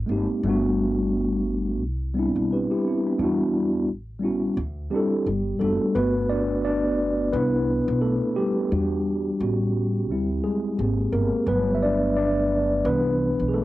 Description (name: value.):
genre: lo-fi hip hop.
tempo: 87 BPM.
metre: 4/4.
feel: swing 57% on 16ths.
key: G major.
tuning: A4 = 440 Hz.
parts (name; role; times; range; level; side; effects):
upright bass; bass; 0.0-13.6 s; F#1 to E2; -28 LUFS; equal; none.
mellow tine electric piano; accompaniment; 0.1-13.6 s; E3 to E5; -22 LUFS; equal; medium stereo tremolo, cassette tape.
room: moderate booth ambience, RT60 0.2 s.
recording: home recording on cassette.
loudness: -21 LUFS.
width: side -16 dB against mid.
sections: 0.0-6.0 A section; 6.0-13.6 B section.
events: tine electric piano solo 6.0-13.6.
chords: 0.4 Gmaj9; 1.8 Cmaj9; 3.2 Em9; 3.9 A13; 4.6 D9sus4; 5.3 Gmaj7; 6.0 Gmaj9; 7.3 Cmaj9; 8.7 Em9; 9.4 A13; 10.1 D9sus4; 10.8 Abmaj9; 11.5 Gmaj9; 12.8 Cmaj9.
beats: | 0.43 1.12 1.81 2.50 | 3.19 3.88 4.57 5.26 | 5.95 6.64 7.33 8.02 | 8.71 9.40 10.09 10.78 | 11.47 12.16 12.85 13.54.